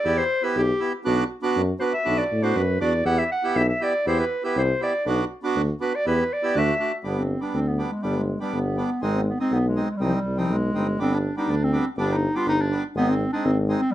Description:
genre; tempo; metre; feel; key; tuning
klezmer; 121 BPM; 2/4; straight; E minor, G phrygian dominant from 7.0 s; A4 = 440 Hz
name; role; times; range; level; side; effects
clear clarinet; melody; 0.0-13.9 s; F3 to F#5; -24 LUFS; equal; plate reverb
accordion; accompaniment; 0.0-13.8 s; G3 to G4; -27 LUFS; right 2 dB; none
warm tuba; bass; 0.1-13.7 s; G1 to A2; -24 LUFS; equal; none
room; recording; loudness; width
moderate studio ambience, RT60 0.5 s; dark, warm production; -21 LUFS; side -13 dB against mid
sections
0.0-7.0 A section; 7.0-13.9 B section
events
speeding up 0.0-13.9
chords
0.0 Em; 1.1 Bm; 3.1 Em; 5.1 Bm; 6.0 Em; 6.5 D; 7.0 G; 9.0 Ab; 10.0 Cm; 11.0 G; 13.0 Ab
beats
| 0.05 0.55 | 1.05 1.56 | 2.06 2.56 | 3.06 3.56 | 4.06 4.56 | 5.05 5.55 | 6.05 6.55 | 7.04 7.54 | 8.04 8.53 | 9.03 9.52 | 10.01 10.51 | 11.00 11.49 | 11.98 12.47 | 12.95 13.44 | 13.93

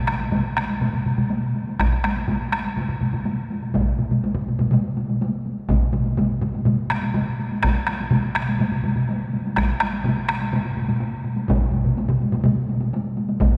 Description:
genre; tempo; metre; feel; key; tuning
japanese traditional, taiko drum ensemble; 124 BPM; 4/4; straight; none; none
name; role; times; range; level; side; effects
solo taiko drums; percussion; 0.1-13.5 s; none; -28 LUFS; equal; none
taiko ensemble; percussion; 0.1-13.5 s; none; -28 LUFS; equal; none
taiko ensemble; percussion; 0.1-13.5 s; none; -28 LUFS; equal; none
taiko ensemble; percussion; 1.8-13.5 s; none; -28 LUFS; equal; none
room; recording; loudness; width
wet cathedral reverb, RT60 4.4 s; recorded in a church or concert hall; -22 LUFS; mono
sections
0.0-13.6 A section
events
none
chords
none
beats
0.33 0.82 1.31 | 1.80 2.29 2.77 3.26 | 3.75 4.24 4.72 5.21 | 5.70 6.18 6.67 7.15 | 7.63 8.12 8.60 9.09 | 9.57 10.05 10.53 11.01 | 11.49 11.97 12.45 12.93 | 13.41

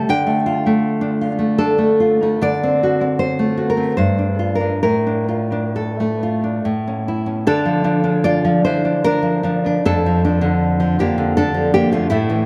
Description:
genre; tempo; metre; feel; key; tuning
romantic piece for solo classical guitar; 65-82 BPM; 3/4; rubato; D minor; A4 = 440 Hz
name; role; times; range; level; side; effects
nylon-string guitar; solo; 0.0-12.5 s; F2 to G5; -18 LUFS; equal; tape echo
room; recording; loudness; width
moderate recital hall reverb, RT60 1.7 s; none; -18 LUFS; mono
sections
0.0-7.5 A section; 7.5-12.5 B section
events
none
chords
0.1 Dm; 2.4 D7; 4.0 G5; 4.8 Dm/A; 6.6 A; 7.5 Dm; 9.8 Dm/F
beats
| 0.08 0.82 1.58 | 2.40 3.17 3.97 | 4.84 5.75 6.63 | 7.47 8.24 9.03 | 9.84 10.60 11.36 | 12.11

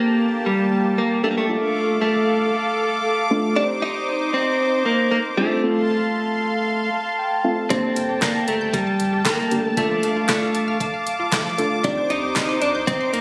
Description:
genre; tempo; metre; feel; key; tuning
synth-pop; 116 BPM; 4/4; straight; G minor; A4 = 438 Hz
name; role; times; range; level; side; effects
direct-recorded clean electric guitar; melody; 0.0-13.2 s; G3 to Eb4; -24 LUFS; equal; tape echo
muted felt-like synth keys; accompaniment; 0.0-12.8 s; A3 to G5; -28 LUFS; equal; chorus, phaser
brassy analog pad; sustained chords; 0.0-13.2 s; Bb3 to D6; -26 LUFS; equal; chorus
resonant blip pluck; arpeggios; 7.7-13.1 s; D3 to G6; -34 LUFS; equal; chorus, tape echo
warm sub bass; bass; 7.7-13.2 s; D1 to C2; -43 LUFS; equal; none
pop drum kit; drums; 7.7-13.2 s; handclaps, hi-hat, kick drum, snare drum; -27 LUFS; equal; overdrive
room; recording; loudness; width
moderate lush hall reverb, RT60 2.6 s; recorded on a phone in the room, studio reverb, compression; -21 LUFS; mono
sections
0.0-13.2 A section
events
synth keys fill 6.9-7.7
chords
0.0 Gmadd9; 1.5 Dm; 3.6 Cmadd9; 5.6 F; 7.7 Gmadd9; 9.8 Dm; 11.8 Cmadd9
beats
0.46 0.98 | 1.50 2.01 2.53 3.05 | 3.57 4.08 4.60 5.12 | 5.63 6.15 6.67 7.19 | 7.70 8.22 8.74 9.26 | 9.77 10.29 10.81 11.32 | 11.84 12.36 12.88

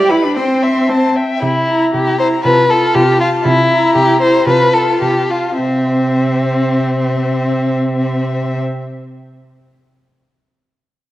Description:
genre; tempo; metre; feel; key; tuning
quick classical-period movement for string quartet; 101-121 BPM; 2/4; rubato; C major; A4 = 440 Hz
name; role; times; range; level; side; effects
rich violin; melody; 0.0-8.6 s; E5 to C6; -22 LUFS; left 4 dB; none
rich violin; second line; 0.0-8.6 s; C4 to E5; -15 LUFS; left 1 dB; none
dark viola; accompaniment; 0.0-8.6 s; G3 to F4; -19 LUFS; right 1 dB; none
rich cello; bass; 0.0-8.6 s; C3 to G4; -18 LUFS; right 2 dB; none
room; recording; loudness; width
wet scoring stage reverb, RT60 1.9 s; worn, warbling old tape, cassette tape, warbly pitch drift; -12 LUFS; side -15 dB against mid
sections
0.0-1.4 A section; 1.4-5.6 B section; 5.6-7.9 C section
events
slowing down 2.9-5.6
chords
0.4 C; 1.4 C7; 2.4 F/C; 3.4 C7; 4.5 F/C; 5.6 C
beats
| 0.36 0.90 | 1.42 1.93 | 2.44 2.95 | 3.44 3.95 | 4.47 5.02 | 5.60 6.17 | 6.73 7.30

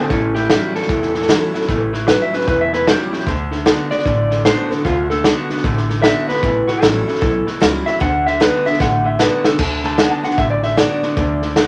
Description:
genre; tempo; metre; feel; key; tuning
rockabilly; 152 BPM; 4/4; swing 64% on 8ths; D major; A4 = 440 Hz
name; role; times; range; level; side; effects
electric guitar through a small old amp; melody; 0.0-11.5 s; C#4 to A5; -21 LUFS; equal; none
picked steel-string acoustic guitar; accompaniment; 0.0-11.7 s; E2 to F#4; -27 LUFS; equal; none
electric guitar through a small old amp; riff; 0.0-11.7 s; A2 to B3; -26 LUFS; equal; none
upright bass; bass; 0.1-11.6 s; E1 to D2; -26 LUFS; equal; none
vintage drum kit; drums; 0.1-11.7 s; crash cymbal, hi-hat, kick drum, snare drum; -20 LUFS; equal; none
room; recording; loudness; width
moderate small room reverb, RT60 0.5 s; none; -16 LUFS; mono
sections
0.0-9.6 A section; 9.6-11.7 A section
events
clean electric guitar solo 0.0-11.7; drum fill 8.8-9.6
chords
0.1 A7; 3.3 D; 6.4 A7; 8.0 D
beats
| 0.10 0.50 0.90 1.29 | 1.69 2.08 2.48 2.87 | 3.27 3.67 4.06 4.46 | 4.85 5.25 5.64 6.04 | 6.43 6.83 7.22 7.62 | 8.01 8.41 8.80 9.20 | 9.59 9.99 10.38 10.78 | 11.17 11.57

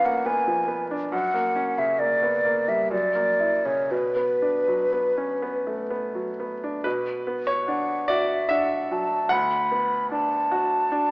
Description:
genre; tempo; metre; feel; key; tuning
classical, romantic duo for flute and grand piano; 58-75 BPM; 3/4; rubato; B minor; A4 = 440 Hz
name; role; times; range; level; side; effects
mellow hollow silver concert flute; melody; 0.0-11.1 s; B4 to B5; -23 LUFS; equal; none
bright baby grand piano; accompaniment; 0.0-11.1 s; D2 to F#5; -26 LUFS; equal; none
room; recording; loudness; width
moderate recital hall reverb, RT60 1.6 s; AM radio sound; -22 LUFS; side -26 dB against mid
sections
0.0-6.8 A section; 6.8-11.1 B section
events
none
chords
0.0 Fdim7; 1.1 F#; 2.9 F#7; 3.9 Bm; 9.3 Bm/D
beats
0.26 | 1.12 2.00 2.92 | 3.91 4.93 5.90 | 6.85 7.68 8.50 | 9.31 10.11 10.91

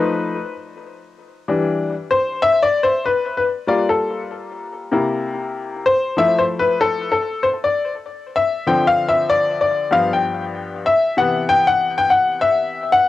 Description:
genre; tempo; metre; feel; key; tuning
hip hop; 96 BPM; 4/4; swing 61% on 16ths; G major; A4 = 440 Hz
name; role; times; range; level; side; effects
bright upright piano; solo; 0.0-13.1 s; G2 to G5; -16 LUFS; left 3 dB; cassette tape, tape echo
room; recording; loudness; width
moderate studio ambience, RT60 0.5 s; home recording on cassette; -16 LUFS; side -14 dB against mid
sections
0.0-13.1 A section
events
upright piano solo 0.0-13.1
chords
0.0 F7#11; 1.2 Em7; 3.7 Gm7; 4.9 C7; 6.2 Fmaj7; 8.7 Dm7; 9.9 G7; 11.2 Cmaj7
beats
0.55 | 1.18 1.80 2.42 3.05 | 3.67 4.30 4.92 5.55 | 6.17 6.80 7.42 8.05 | 8.68 9.30 9.93 10.55 | 11.18 11.80 12.43 13.05

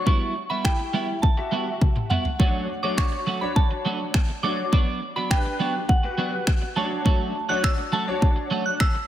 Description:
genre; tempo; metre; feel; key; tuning
dance-pop; 103 BPM; 4/4; straight; D major; A4 = 440 Hz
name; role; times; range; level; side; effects
soft synth bell; melody; 0.0-9.1 s; F#5 to F#6; -28 LUFS; right 2 dB; chorus, analog delay
clear grand piano; accompaniment; 0.0-8.8 s; D4 to E5; -31 LUFS; left 3 dB; ensemble chorus, sidechain pumping
twelve-string electric guitar; riff; 0.1-9.0 s; F#3 to F#4; -28 LUFS; right 3 dB; lush chorus
pop drum kit; drums; 0.1-8.9 s; finger snaps, kick drum, toms; -21 LUFS; equal; overdrive
room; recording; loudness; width
moderate lush hall reverb, RT60 1.8 s; dreamy mix soaked in reverb; -21 LUFS; side -12 dB against mid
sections
0.0-9.1 A section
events
drum fill 1.8-2.4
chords
0.1 Emadd9; 2.4 Dmaj7; 4.7 Gmaj7; 6.8 Dmaj7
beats
| 0.07 0.65 1.23 1.81 | 2.40 2.98 3.56 4.14 | 4.72 5.31 5.89 6.47 | 7.06 7.64 8.22 8.80

